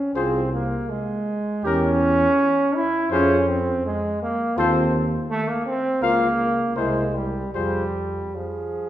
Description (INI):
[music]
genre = classical, brass quintet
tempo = 75-84 BPM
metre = 4/4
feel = rubato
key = F minor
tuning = A4 = 441 Hz
[part]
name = clear trombone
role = accompaniment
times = 0.0-8.9 s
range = F3 to E4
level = -22 LUFS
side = right 1 dB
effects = none
[part]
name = mellow trumpet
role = melody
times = 0.2-7.8 s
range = Bb4 to F5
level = -28 LUFS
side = left 6 dB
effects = none
[part]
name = mellow flugelhorn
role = second line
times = 0.2-8.9 s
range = G4 to Bb4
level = -29 LUFS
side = right 2 dB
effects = none
[part]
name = warm French horn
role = accompaniment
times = 0.2-7.8 s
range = E4 to G4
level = -28 LUFS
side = left 4 dB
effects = none
[part]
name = dark bass trombone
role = bass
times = 0.2-8.2 s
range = C2 to F2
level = -27 LUFS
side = equal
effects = none
[sound]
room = wet recital hall reverb, RT60 1.5 s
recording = heard from further back in the room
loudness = -20 LUFS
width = side -12 dB against mid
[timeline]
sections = 0.0-8.9 A section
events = none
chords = 0.0 Fm; 1.6 Em6; 3.1 Fm; 4.6 F7/Eb; 6.0 Bbm/Db; 6.8 C7; 7.5 Fm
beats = 0.15 0.89 | 1.65 2.38 3.11 3.85 | 4.58 5.30 6.02 6.77 | 7.55 8.34